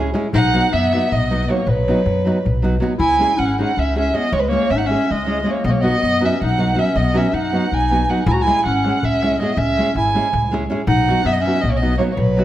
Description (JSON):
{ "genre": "balkan folk, Balkan wedding band", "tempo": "320 BPM (eighths)", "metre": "7/8", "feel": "straight", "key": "B major", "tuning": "A4 = 440 Hz", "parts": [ { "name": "nylon-string guitar", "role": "accompaniment", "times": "0.0-12.4 s", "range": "F#3 to G#4", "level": "-22 LUFS", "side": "right 1 dB", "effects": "none" }, { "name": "upright bass", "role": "bass", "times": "0.0-12.4 s", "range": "G#1 to F#2", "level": "-22 LUFS", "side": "left 1 dB", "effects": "none" }, { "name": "darbuka", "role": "percussion", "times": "0.2-3.0, 8.3-12.4 s", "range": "none", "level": "-25 LUFS", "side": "left 1 dB", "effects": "none" }, { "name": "dark violin", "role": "melody", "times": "0.3-12.4 s", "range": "B4 to A#5", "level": "-20 LUFS", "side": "right 2 dB", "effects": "none" }, { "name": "warm clarinet", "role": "second line", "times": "0.3-12.4 s", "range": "F#3 to F#4", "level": "-22 LUFS", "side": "left 3 dB", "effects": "none" } ], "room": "moderate recital hall reverb, RT60 1.8 s", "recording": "none", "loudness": "-15 LUFS", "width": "side -13 dB against mid", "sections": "0.0-3.0 A section; 3.0-12.4 A section", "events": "none", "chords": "0.3 B; 3.0 C#m; 5.6 B; 8.3 C#m; 10.9 B" }